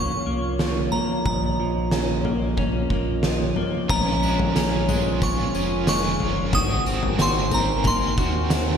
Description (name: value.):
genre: dream pop.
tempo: 91 BPM.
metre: 4/4.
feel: straight.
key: Bb minor.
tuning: A4 = 441 Hz.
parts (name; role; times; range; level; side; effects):
glassy synth bell; melody; 0.0-8.8 s; Bb5 to Eb6; -27 LUFS; equal; chorus, tape echo, slapback echo.
warbly tape-like pad; sustained chords; 0.0-8.8 s; Bb3 to Ab5; -29 LUFS; right 2 dB; chorus, built-in reverb.
clean electric guitar; arpeggios; 0.0-8.8 s; Eb3 to Gb4; -27 LUFS; left 3 dB; analog chorus, tape echo, slapback echo.
sub bass with octave; bass; 0.0-8.8 s; F1 to Eb2; -28 LUFS; equal; none.
oversized low-tuned drum kit; drums; 0.6-8.7 s; crash cymbal, kick drum, snare drum, tambourine, toms; -24 LUFS; equal; none.
crunchy overdriven guitar; accompaniment; 3.9-8.8 s; Ab2 to Bb4; -31 LUFS; right 6 dB; tremolo, lush chorus, slapback echo.
room: moderate scoring stage reverb, RT60 1.9 s, small room reverb.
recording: big arena sound.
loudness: -20 LUFS.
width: side -7 dB against mid.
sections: 0.0-3.9 A section; 3.9-8.8 B section.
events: none.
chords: 0.0 Bbm; 3.9 Bbm7; 6.5 Ab9.